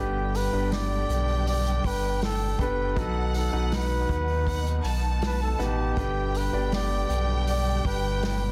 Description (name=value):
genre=pop ballad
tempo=80 BPM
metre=4/4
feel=straight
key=G major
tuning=A4 = 438 Hz
part: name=warm flugelhorn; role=melody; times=0.0-8.5 s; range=G4 to D5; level=-33 LUFS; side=equal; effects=none
part: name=warm symphonic violin section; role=second line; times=0.0-8.5 s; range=F#5 to A5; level=-39 LUFS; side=equal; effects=none
part: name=clear concert grand piano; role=accompaniment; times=0.0-8.5 s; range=G2 to F#5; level=-36 LUFS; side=equal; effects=none
part: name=muted studio string section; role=sustained chords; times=0.0-8.5 s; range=B2 to F#5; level=-39 LUFS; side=equal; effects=none
part: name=sub bass with octave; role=bass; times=0.0-8.5 s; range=F#1 to D#2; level=-30 LUFS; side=equal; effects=none
part: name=unplugged drum kit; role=drums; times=0.3-8.4 s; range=hi-hat, kick drum, snare drum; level=-35 LUFS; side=equal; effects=soft clipping on snare
room=little or no reverb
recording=dense, heavily limited modern master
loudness=-26 LUFS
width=mono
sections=0.0-8.5 A section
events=none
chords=0.0 G; 3.0 B; 6.0 G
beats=0.72 1.47 2.22 | 2.97 3.72 4.47 5.22 | 5.97 6.72 7.47 8.22